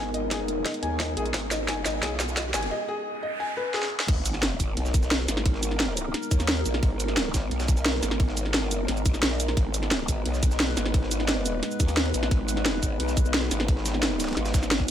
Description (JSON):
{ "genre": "dark technical drum and bass", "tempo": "175 BPM", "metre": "4/4", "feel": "straight", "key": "G# minor", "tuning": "A4 = 440 Hz", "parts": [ { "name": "dark analog pad", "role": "sustained chords", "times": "0.0-14.9 s", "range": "G#3 to B4", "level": "-32 LUFS", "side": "left 1 dB", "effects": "chorus, phaser, sidechain pumping" }, { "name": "felt-muted upright piano", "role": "arpeggios", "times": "0.0-3.8 s", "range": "G#4 to G#5", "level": "-31 LUFS", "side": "left 2 dB", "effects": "sidechain pumping, ping-pong delay" }, { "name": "growl bass", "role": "bass", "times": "0.0-14.9 s", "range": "G#1 to D#2", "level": "-29 LUFS", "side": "equal", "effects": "chorus, overdrive" }, { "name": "riser, noise sweep and sub drop", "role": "sound effects", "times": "0.7-5.5 s", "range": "none", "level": "-37 LUFS", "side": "right 1 dB", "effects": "none" }, { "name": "drum and bass drum kit", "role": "drums", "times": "0.1-14.9 s", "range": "crash cymbal, hi-hat, shaker, snare drum", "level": "-27 LUFS", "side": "equal", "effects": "high-pass filter on hats, high-pass filter on snare, high-pass filter on perc, high-pass filter on cymbals" }, { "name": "electronic kick drum", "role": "drums", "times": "0.3-14.9 s", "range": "none", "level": "-24 LUFS", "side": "equal", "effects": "high-pass filter on kick, high-pass filter on room" }, { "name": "breakbeat sampler-style drum kit", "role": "drums", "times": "4.1-14.9 s", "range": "ride cymbal, snare drum", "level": "-39 LUFS", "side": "right 1 dB", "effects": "none" } ], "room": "light reverb, digital ambience", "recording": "none", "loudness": "-23 LUFS", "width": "side -10 dB against mid", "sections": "0.0-4.1 A section; 4.1-14.9 B section", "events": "build-up 0.0-4.1; drum fill 0.0-2.7, 3.7-4.1; riser 0.7-2.7; noise sweep 2.7-4.1; drop 4.1-14.9; impact 4.1-5.5", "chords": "0.0 G#madd9", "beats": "0.31 0.66 1.00 | 1.34 1.68 2.03 2.37 | 2.71 3.06 3.40 3.74 | 4.08 4.43 4.77 5.11 | 5.46 5.80 6.14 6.48 | 6.83 7.17 7.51 7.86 | 8.20 8.54 8.88 9.23 | 9.57 9.91 10.26 10.60 | 10.94 11.28 11.63 11.97 | 12.31 12.65 13.00 13.34 | 13.68 14.03 14.37 14.71" }